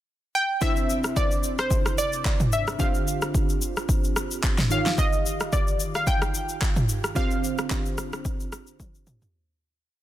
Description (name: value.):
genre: amapiano.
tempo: 110 BPM.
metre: 4/4.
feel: swing 55% on 16ths.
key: unclear.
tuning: A4 = 440 Hz.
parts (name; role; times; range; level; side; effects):
analog pluck; melody; 0.3-8.8 s; C5 to G5; -28 LUFS; equal; chorus, digital delay.
glassy digital keys; accompaniment; 0.6-9.4 s; C3 to F5; -30 LUFS; right 2 dB; chorus.
deep house drum kit; drums; 0.6-9.3 s; handclaps, kick drum, rim click, shaker, snare drum, toms; -24 LUFS; equal; soft clipping on snare.
room: little or no reverb.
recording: dense, heavily limited modern master.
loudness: -22 LUFS.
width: side -13 dB against mid.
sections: 0.0-0.6 pickup bar; 0.6-9.3 groove.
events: fade-out 7.2-9.3; drum fill 8.8-9.3.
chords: 0.0 N.C.; 0.6 Cadd9; 2.8 Dm7; 4.7 Ebadd9; 7.2 Dm7.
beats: 0.07 | 0.61 1.16 1.71 2.25 | 2.80 3.34 3.89 4.43 | 4.98 5.52 6.07 6.62 | 7.16 7.71 8.25 8.80.